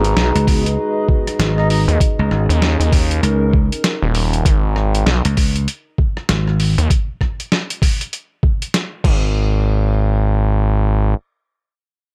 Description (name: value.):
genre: glitch hop.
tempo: 98 BPM.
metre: 4/4.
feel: swing 60% on 16ths.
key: G# minor.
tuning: A4 = 440 Hz.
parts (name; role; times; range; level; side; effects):
dark analog pad; sustained chords; 0.0-4.4 s; G#3 to B4; -29 LUFS; equal; chorus, vintage 12-bit sampler grit, sidechain pumping.
gritty driven synth bass; bass; 0.0-11.1 s; D#1 to D#2; -17 LUFS; equal; none.
boom bap sampler-style drum kit; drums; 0.0-9.2 s; crash cymbal, hi-hat, rim click, snare drum; -24 LUFS; equal; none.
warbly tape-like pad; texture; 0.0-4.5 s; D#4 to A#5; -26 LUFS; equal; chorus, built-in reverb, sidechain pumping.
slap bass; bass; 0.4-6.8 s; G#1 to C#2; -18 LUFS; equal; none.
electronic kick drum; drums; 0.5-9.2 s; none; -18 LUFS; equal; none.
mellow tenor saxophone; melody; 1.6-1.8 s; D#4; -29 LUFS; equal; tape echo.
room: light reverb, digital ambience.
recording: echo-heavy mix.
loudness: -17 LUFS.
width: mono.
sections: 0.0-9.4 A section; 9.4-11.8 B section.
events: drop 0.0-9.4.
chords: 0.0 G#m7; 2.0 D#7sus4; 4.5 G#m; 6.9 N.C..